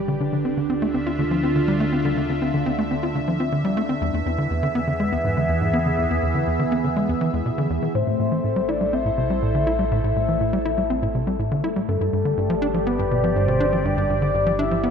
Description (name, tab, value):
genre	ambient, sequencer-driven space music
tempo	122 BPM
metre	4/4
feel	straight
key	A minor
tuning	A4 = 440 Hz
part	phased analog pad	sustained chords	0.0-14.9 s	D3 to E5	-25 LUFS	equal	phaser, chorus
part	analog drone	bass	0.7-14.9 s	G1 to E2	-29 LUFS	right 1 dB	chorus
part	tight sequencer bass	riff	0.1-14.9 s	E2 to F4	-23 LUFS	equal	ping-pong delay
part	soft octave-layered synth lead	melody	7.9-14.9 s	A4 to E5	-24 LUFS	left 3 dB	chorus, phaser, ping-pong delay
room	wet spring reverb, RT60 2.6 s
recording	echo-heavy mix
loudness	-20 LUFS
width	side -7 dB against mid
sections	0.0-14.9 A section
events	none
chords	0.1 Dmadd9; 4.0 E; 8.0 Am; 11.9 G